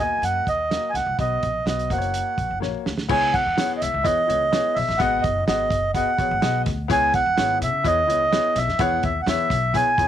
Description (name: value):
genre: uptempo 1960s-style soul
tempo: 126 BPM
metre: 4/4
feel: straight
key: unclear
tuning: A4 = 441 Hz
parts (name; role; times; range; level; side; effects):
- mellow accordion; melody; 0.0-10.1 s; D#5 to G#5; -21 LUFS; right 2 dB; none
- warm baby grand piano; accompaniment; 0.0-10.1 s; A#3 to F#5; -28 LUFS; left 14 dB; none
- upright bass; bass; 0.0-10.1 s; F#1 to C#3; -29 LUFS; left 1 dB; none
- warm soul drum kit; drums; 0.2-10.1 s; crash cymbal, hi-hat, kick drum, snare drum; -27 LUFS; right 2 dB; none
room: light reverb, small room ambience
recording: 1960s-style stereo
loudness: -19 LUFS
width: side -10 dB against mid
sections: 0.0-3.1 A section; 3.1-10.1 B section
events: drum fill 2.6-3.1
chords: 0.0 D#m; 1.2 B; 1.9 F#; 3.1 C#m7; 5.0 G#m7; 6.9 C#m7; 8.8 E6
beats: 0.23 0.71 | 1.18 1.66 2.14 2.62 | 3.10 3.57 4.05 4.52 | 5.00 5.47 5.95 6.42 | 6.90 7.37 7.85 8.32 | 8.79 9.27 9.74